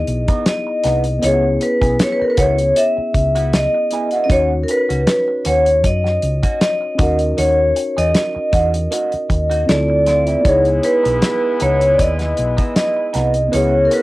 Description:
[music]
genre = lush 1970s-style soul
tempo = 78 BPM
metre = 4/4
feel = swing 54% on 16ths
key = C# dorian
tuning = A4 = 435 Hz
[part]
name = vibraphone with medium hard mallets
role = melody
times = 0.0-14.0 s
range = A#4 to E5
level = -16 LUFS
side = equal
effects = cassette tape
[part]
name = mellow tine electric piano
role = accompaniment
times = 0.0-14.0 s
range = B3 to C#5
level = -24 LUFS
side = left 1 dB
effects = cassette tape
[part]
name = hollow-body short-scale fingered electric bass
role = bass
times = 0.0-13.9 s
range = B1 to F#2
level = -20 LUFS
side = equal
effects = none
[part]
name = damped 70s drum kit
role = drums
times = 0.1-14.0 s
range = hi-hat, kick drum, snare drum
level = -19 LUFS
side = equal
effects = cassette tape
[part]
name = electric guitar through a small old amp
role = riff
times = 0.3-13.9 s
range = E3 to G#4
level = -26 LUFS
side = right 5 dB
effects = wah, cassette tape
[part]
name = clear horn section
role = stabs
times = 10.5-14.0 s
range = G#3 to F#4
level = -28 LUFS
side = left 2 dB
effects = cassette tape, tape echo
[sound]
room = moderate small room ambience, RT60 0.5 s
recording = home recording on cassette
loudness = -14 LUFS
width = side -18 dB against mid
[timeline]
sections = 0.0-14.0 A section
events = none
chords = 0.0 C#m9 (rootless); 1.2 F#7sus4; 4.3 D#m7; 9.7 Dm9; 10.5 C#m9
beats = 0.46 | 1.23 2.00 2.77 3.53 | 4.30 5.07 5.84 6.61 | 7.38 8.14 8.91 9.68 | 10.45 11.22 11.99 12.76 | 13.53

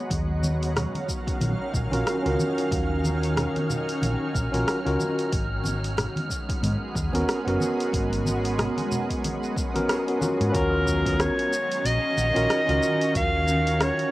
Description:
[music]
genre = sunset chillout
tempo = 92 BPM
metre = 4/4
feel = swing 58% on 16ths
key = Eb minor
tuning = A4 = 439 Hz
[part]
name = shimmering ambient pad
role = sustained chords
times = 0.0-14.1 s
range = Eb3 to F5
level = -30 LUFS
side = equal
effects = chorus, built-in reverb, cassette tape, plate reverb
[part]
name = hollow-body short-scale fingered electric bass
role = bass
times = 0.1-13.9 s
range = Gb1 to Ab2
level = -27 LUFS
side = equal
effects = none
[part]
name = deep house drum kit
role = drums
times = 0.1-14.1 s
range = hi-hat, rim click, shaker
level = -31 LUFS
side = equal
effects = small room ambience, cassette tape
[part]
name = electronic kick drum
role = drums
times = 0.1-13.3 s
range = none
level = -31 LUFS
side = equal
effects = small room ambience, cassette tape
[part]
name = wind-like tuned noise texture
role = texture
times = 1.0-10.6 s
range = F6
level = -38 LUFS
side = right 2 dB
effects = built-in reverb, cassette tape, plate reverb
[part]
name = congas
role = percussion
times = 0.4-10.4 s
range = none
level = -32 LUFS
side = equal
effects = none
[part]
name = barky tine electric piano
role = accompaniment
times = 1.9-14.1 s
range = Cb4 to Bb4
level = -27 LUFS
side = equal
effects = auto-pan, cassette tape, analog delay, plate reverb
[part]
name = breathy soprano saxophone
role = melody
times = 10.5-14.1 s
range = Bb4 to F5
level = -24 LUFS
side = equal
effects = cassette tape, plate reverb
[sound]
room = moderate studio reverb, RT60 0.5 s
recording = home recording on cassette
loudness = -22 LUFS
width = side -17 dB against mid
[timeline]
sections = 0.0-10.5 A section; 10.5-14.1 B section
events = band accent 9.9-10.2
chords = 0.1 Ebm9; 5.3 Abm11; 10.5 Ebm9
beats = | 0.10 0.76 1.41 2.06 | 2.71 3.37 4.02 4.67 | 5.32 5.97 6.63 7.28 | 7.93 8.58 9.23 9.89 | 10.54 11.19 11.84 12.50 | 13.15 13.80

